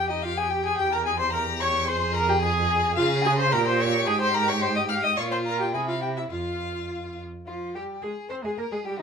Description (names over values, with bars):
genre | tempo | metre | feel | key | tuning
quick classical-period movement for string quartet | 109 BPM | 2/4 | straight | F minor | A4 = 440 Hz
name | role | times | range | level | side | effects
rich violin | melody | 0.0-9.0 s | Eb4 to F6 | -27 LUFS | left 6 dB | none
rich violin | second line | 0.0-9.0 s | E4 to C5 | -32 LUFS | left 3 dB | none
clear viola | accompaniment | 0.0-9.0 s | Eb3 to F5 | -27 LUFS | right 3 dB | none
rich cello | bass | 0.0-9.0 s | E2 to C5 | -29 LUFS | right 3 dB | none
room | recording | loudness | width
moderate studio reverb, RT60 0.6 s | minimal, uncompressed stereo recording | -22 LUFS | side -6 dB against mid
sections
0.0-7.5 A section; 7.5-9.0 A section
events
none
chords
0.0 Fm9; 0.8 Edim7; 1.9 Fm; 3.0 Db; 3.5 Bbm; 4.1 Abmaj13; 5.2 Bbm6; 5.7 C; 6.3 N.C.; 7.5 Fm